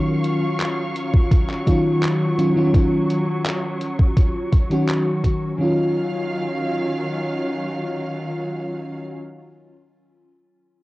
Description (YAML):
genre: vaporwave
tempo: 84 BPM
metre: 4/4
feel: straight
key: Eb minor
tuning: A4 = 440 Hz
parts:
  - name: FM electric piano with soft pad layer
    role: accompaniment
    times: 0.0-9.2 s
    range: Eb3 to Gb4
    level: -21 LUFS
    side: equal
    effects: tremolo, lush chorus, vintage 12-bit sampler grit, cassette tape, tape echo
  - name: rich studio string section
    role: sustained chords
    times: 0.0-9.2 s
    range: Eb3 to Db6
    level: -28 LUFS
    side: equal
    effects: vintage 12-bit sampler grit, low-pass filter, cassette tape
  - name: detuned 8-bit digital drum machine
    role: drums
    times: 0.2-5.4 s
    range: handclaps, hi-hat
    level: -29 LUFS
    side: equal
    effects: cassette tape
  - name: electronic kick drum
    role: drums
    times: 1.1-5.4 s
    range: none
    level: -17 LUFS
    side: equal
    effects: cassette tape
room: light reverb, digital ambience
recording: home recording on cassette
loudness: -18 LUFS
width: side -19 dB against mid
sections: 0.0-5.6 A section; 5.6-8.5 B section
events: filter sweep on string section 0.0-5.6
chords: 0.0 Ebm9